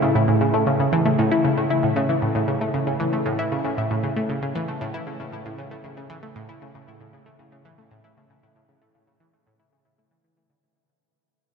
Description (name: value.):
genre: ambient.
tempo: 116 BPM.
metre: 4/4.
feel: straight.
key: A major.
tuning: A4 = 439 Hz.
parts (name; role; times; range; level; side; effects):
analog pluck; riff; 0.0-10.6 s; A2 to E4; -21 LUFS; equal; chorus, phaser, ping-pong delay.
room: wet huge ambient reverb, RT60 9.0 s.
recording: dreamy mix soaked in reverb.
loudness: -20 LUFS.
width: side -6 dB against mid.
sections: 0.0-10.6 A section.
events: fade-out on synth arpeggio sound 0.0-10.6; fade-out 0.0-10.6.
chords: none.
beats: | 0.28 0.80 1.31 1.83 | 2.35 2.87 3.38 3.90 | 4.42 4.94 5.45 5.97 | 6.49 7.00 7.52 8.04 | 8.56 9.07 9.59 10.11.